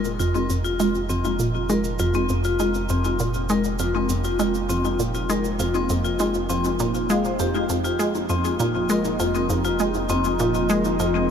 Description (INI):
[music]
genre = ambient, sequencer-driven space music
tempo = 100 BPM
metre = 4/4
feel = straight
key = F minor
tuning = A4 = 442 Hz
[part]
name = evolving wavetable pad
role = sustained chords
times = 0.0-11.3 s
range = F3 to G4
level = -30 LUFS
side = right 2 dB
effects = phaser, built-in reverb
[part]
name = resonant blip pluck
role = riff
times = 0.0-11.3 s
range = F2 to Ab3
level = -23 LUFS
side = equal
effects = chorus, ping-pong delay
[part]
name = warm sub bass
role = bass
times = 0.0-11.3 s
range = F1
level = -31 LUFS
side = right 1 dB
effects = none
[part]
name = shaker and congas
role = percussion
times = 0.0-11.1 s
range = none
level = -33 LUFS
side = right 3 dB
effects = ping-pong delay
[part]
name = vibraphone with medium mallets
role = arpeggios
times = 0.2-11.3 s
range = C4 to F5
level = -25 LUFS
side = left 3 dB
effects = auto-pan, ping-pong delay
[sound]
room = moderate huge ambient reverb, RT60 8.0 s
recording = none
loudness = -20 LUFS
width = side -8 dB against mid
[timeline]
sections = 0.0-11.3 A section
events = fade-in on ambient pad 0.0-11.3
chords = 0.0 Fm7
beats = 0.20 | 0.80 1.40 2.00 2.60 | 3.20 3.80 4.40 5.00 | 5.60 6.20 6.80 7.40 | 8.00 8.60 9.20 9.80 | 10.40 11.00